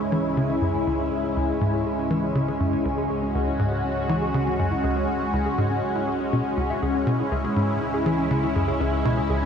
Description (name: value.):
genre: ambient, sequencer-driven space music.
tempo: 121 BPM.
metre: 4/4.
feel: straight.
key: C# minor.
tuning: A4 = 439 Hz.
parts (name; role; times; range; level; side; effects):
lush unison pad; sustained chords; 0.0-9.5 s; G#3 to F#4; -24 LUFS; left 1 dB; chorus, phaser, shimmer reverb.
warbly dusty pluck; arpeggios; 0.0-9.5 s; C#4 to E5; -33 LUFS; equal; chorus, auto-pan, ping-pong delay, shimmer reverb.
fat analog bass; bass; 0.0-9.5 s; C#2; -34 LUFS; equal; tube saturation.
tight sequencer bass; riff; 0.1-9.5 s; C#2 to E3; -26 LUFS; equal; lush chorus, ping-pong delay.
room: wet huge ambient reverb, RT60 8.7 s.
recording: in a vast, echoing space.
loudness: -21 LUFS.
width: side -7 dB against mid.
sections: 0.0-9.5 A section.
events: none.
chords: 0.0 C#m.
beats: 0.37 | 0.87 1.36 1.86 2.36 | 2.85 3.35 3.84 4.34 | 4.84 5.33 5.83 6.32 | 6.82 7.32 7.81 8.31 | 8.80 9.30.